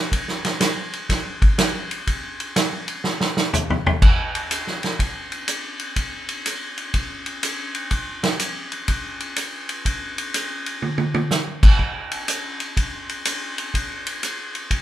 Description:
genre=jazz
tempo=124 BPM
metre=4/4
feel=swing 66% on 8ths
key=none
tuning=none
part: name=vintage drum kit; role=drums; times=0.1-14.8 s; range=crash cymbal, hi-hat, kick drum, ride cymbal, snare drum, toms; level=-20 LUFS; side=equal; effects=none
room=moderate studio reverb, RT60 0.8 s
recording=minimal, uncompressed stereo recording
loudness=-20 LUFS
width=side -13 dB against mid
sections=0.0-4.0 A section; 4.0-14.8 B section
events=drum fill 3.0-4.0, 10.8-11.3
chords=none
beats=| 0.11 0.60 1.09 1.58 | 2.07 2.56 3.04 3.53 | 4.02 4.50 4.99 5.48 | 5.96 6.45 6.94 7.42 | 7.91 8.39 8.88 9.37 | 9.85 10.34 10.82 11.31 | 11.79 12.28 12.76 13.25 | 13.73 14.22 14.70

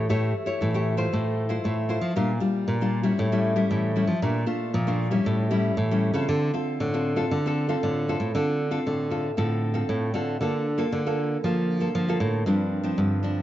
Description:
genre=samba and choro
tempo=116 BPM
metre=4/4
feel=straight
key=D minor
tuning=A4 = 441 Hz
part: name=nylon-string guitar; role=accompaniment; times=0.0-13.4 s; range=G2 to C#5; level=-26 LUFS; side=left 1 dB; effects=none
part: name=nylon-string guitar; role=bass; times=0.0-13.4 s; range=G2 to F3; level=-25 LUFS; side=right 1 dB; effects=none
room=moderate plate reverb, RT60 2.7 s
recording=dreamy mix soaked in reverb, nothing above 7.7 kHz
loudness=-23 LUFS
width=side -13 dB against mid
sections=0.0-8.3 A section; 8.3-13.4 B section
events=none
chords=0.0 A7; 1.1 Fmaj7/A; 2.2 Gm7/Bb; 3.2 A7; 4.2 Bbmaj7; 5.3 A7; 6.3 Dm7; 10.4 Bbmaj7/D; 12.5 G7sus4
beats=| 0.10 0.61 1.13 1.64 | 2.16 2.68 3.19 3.71 | 4.22 4.74 5.26 5.77 | 6.29 6.80 7.32 7.83 | 8.35 8.86 9.38 9.89 | 10.41 10.92 11.44 11.95 | 12.47 12.98

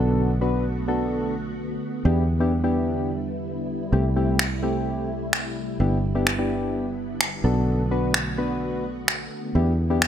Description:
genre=dance-pop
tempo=128 BPM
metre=4/4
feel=straight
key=unclear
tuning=A4 = 440 Hz
part: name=soft electric-piano-like synth keys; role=accompaniment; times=0.0-10.0 s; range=A3 to B4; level=-25 LUFS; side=left 1 dB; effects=chorus
part: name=soft string machine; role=sustained chords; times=0.0-10.1 s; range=C3 to F#4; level=-30 LUFS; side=right 1 dB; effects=ensemble chorus
part: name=fingered electric bass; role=bass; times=0.0-10.1 s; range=G1 to E2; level=-24 LUFS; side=equal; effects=none
part: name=electronic finger snaps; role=drums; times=4.4-10.1 s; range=none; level=-23 LUFS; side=equal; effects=overdrive
room=light reverb, digital ambience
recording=none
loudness=-22 LUFS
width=side -10 dB against mid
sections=0.0-10.1 A section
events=none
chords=0.0 Bm7; 2.1 Em7; 3.9 C6; 5.8 G6; 7.4 Bm7; 9.6 Em7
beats=| 0.18 0.65 1.11 1.58 | 2.05 2.52 2.99 3.46 | 3.93 4.39 4.86 5.33 | 5.80 6.27 6.74 7.21 | 7.68 8.14 8.61 9.08 | 9.55 10.02

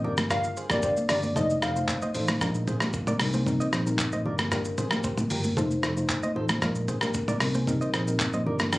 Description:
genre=afrobeats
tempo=114 BPM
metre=4/4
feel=straight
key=C minor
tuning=A4 = 440 Hz
part: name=soft round pluck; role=accompaniment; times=0.0-8.8 s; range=G3 to C5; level=-30 LUFS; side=left 1 dB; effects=chorus
part: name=direct-recorded clean electric guitar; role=riff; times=0.0-8.8 s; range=F4 to Eb5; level=-35 LUFS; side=right 2 dB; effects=tremolo, ping-pong delay
part: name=fingered electric bass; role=bass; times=0.0-8.8 s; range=F1 to C2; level=-30 LUFS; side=equal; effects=none
part: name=congas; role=percussion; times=0.0-8.7 s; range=none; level=-33 LUFS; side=equal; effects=none
part: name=dusty soul sampler-style drum kit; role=drums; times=0.2-8.8 s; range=handclaps, hi-hat, kick drum, rim click, shaker, toms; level=-28 LUFS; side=equal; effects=overdrive
part: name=glassy wavetable pluck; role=melody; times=0.3-1.7 s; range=D5 to F5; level=-29 LUFS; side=left 1 dB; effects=chorus, ping-pong delay
room=little or no reverb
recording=recorded on a phone in the room, club reverb, compression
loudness=-24 LUFS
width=side -19 dB against mid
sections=0.0-8.8 A section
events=none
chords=0.0 Gm7; 1.4 F7; 2.4 Bb7; 3.2 Cm7; 4.3 Gm7; 5.6 F7; 6.6 Bb7; 7.4 Cm7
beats=| 0.31 0.83 1.36 1.89 | 2.41 2.94 3.46 3.99 | 4.52 5.04 5.57 6.09 | 6.62 7.15 7.67 8.20 | 8.73

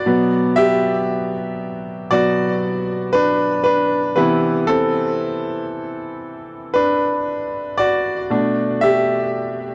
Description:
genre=pop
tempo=58 BPM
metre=4/4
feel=straight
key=G major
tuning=A4 = 440 Hz
part: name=clear concert grand piano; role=solo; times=0.0-9.7 s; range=B2 to E5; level=-19 LUFS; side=equal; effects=digital delay
room=light reverb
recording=worn, warbling old tape, cassette tape, warbly pitch drift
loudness=-19 LUFS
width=mono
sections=0.0-9.7 A section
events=grand piano solo 0.0-9.7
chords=0.1 Gmaj7/B; 4.2 Cmaj7; 8.3 Bm7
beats=| 0.07 1.09 2.11 3.13 | 4.17 5.20 6.22 7.26 | 8.30 9.34

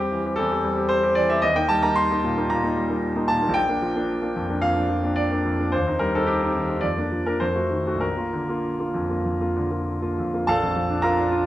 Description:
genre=classical, romantic character piece for solo piano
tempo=95-118 BPM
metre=4/4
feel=rubato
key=Bb major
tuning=A4 = 442 Hz
part: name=bright concert grand piano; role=solo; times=0.0-11.5 s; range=Bb1 to C6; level=-20 LUFS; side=equal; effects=none
room=wet recital hall reverb, RT60 1.4 s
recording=none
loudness=-20 LUFS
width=side -14 dB against mid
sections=0.0-10.5 A section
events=none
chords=0.0 C/E; 1.4 Eb; 3.5 Bb; 5.7 Cm/Eb; 6.8 Bb/F; 7.4 F7b9; 8.0 Bb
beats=0.38 0.90 | 1.42 1.96 2.50 3.03 | 3.55 4.09 4.63 5.18 | 5.73 6.27 6.83 7.41 | 8.02 8.64 9.26 9.87 | 10.49 11.05

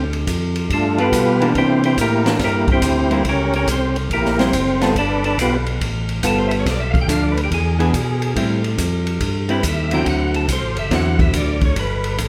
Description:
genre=soul jazz organ trio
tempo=141 BPM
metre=4/4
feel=swing 66% on 8ths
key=G mixolydian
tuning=A4 = 441 Hz
part: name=percussive tonewheel organ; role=melody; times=0.0-12.2 s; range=A3 to G5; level=-22 LUFS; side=equal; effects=overdrive, chorus vibrato, stopped rotary speaker
part: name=tonewheel organ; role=bass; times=0.0-12.3 s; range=F#1 to C3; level=-24 LUFS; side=equal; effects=overdrive, stopped rotary speaker
part: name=open jazz drum kit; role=drums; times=0.1-12.3 s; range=hi-hat, kick drum, ride cymbal, snare drum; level=-25 LUFS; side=equal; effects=none
part: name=vintage hollow-body jazz guitar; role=accompaniment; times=1.0-11.6 s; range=D3 to A4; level=-24 LUFS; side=equal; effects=none
room=moderate concert hall reverb, RT60 1.8 s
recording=recorded in a church or concert hall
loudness=-18 LUFS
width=mono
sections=0.0-12.3 A section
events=tonewheel organ solo 0.0-12.3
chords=0.0 Dm; 0.7 G9; 1.6 C9; 3.3 C#dim7; 5.0 G9; 6.7 Bm7b5; 7.5 E7; 8.4 Am7; 10.1 D9; 11.8 Gadd9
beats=0.28 0.70 1.12 | 1.55 1.98 2.40 2.83 | 3.25 3.68 4.10 4.53 | 4.95 5.38 5.80 6.23 | 6.66 7.08 7.51 7.93 | 8.36 8.78 9.21 9.64 | 10.06 10.49 10.91 11.34 | 11.77 12.19

